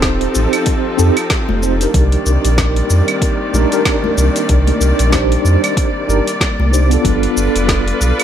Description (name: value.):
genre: sunset chillout.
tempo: 94 BPM.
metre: 4/4.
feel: swing 58% on 16ths.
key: C dorian.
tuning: A4 = 440 Hz.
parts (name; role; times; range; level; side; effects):
mellow tine electric piano; accompaniment; 0.0-8.2 s; B3 to C5; -18 LUFS; right 1 dB; medium stereo tremolo, auto-pan, ping-pong delay.
warm symphonic string section; sustained chords; 0.0-8.2 s; C3 to D5; -20 LUFS; equal; none.
warm sub bass; bass; 0.0-8.1 s; Eb1 to F2; -14 LUFS; equal; tube saturation.
electronic kick drum; drums; 0.0-7.8 s; none; -18 LUFS; equal; overdrive, studio reverb.
smooth R&B drum kit; drums; 0.0-8.2 s; claves, hi-hat, shaker, snare drum; -21 LUFS; right 1 dB; studio reverb.
congas; percussion; 1.5-7.2 s; none; -24 LUFS; left 3 dB; none.
room: little or no reverb.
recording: none.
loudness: -12 LUFS.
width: side -9 dB against mid.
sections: 0.0-8.2 A section.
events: none.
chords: 0.0 F9; 1.9 Cm9; 7.1 G9.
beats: 0.03 0.67 1.31 | 1.95 2.58 3.22 3.86 | 4.50 5.14 5.78 6.41 | 7.05 7.69.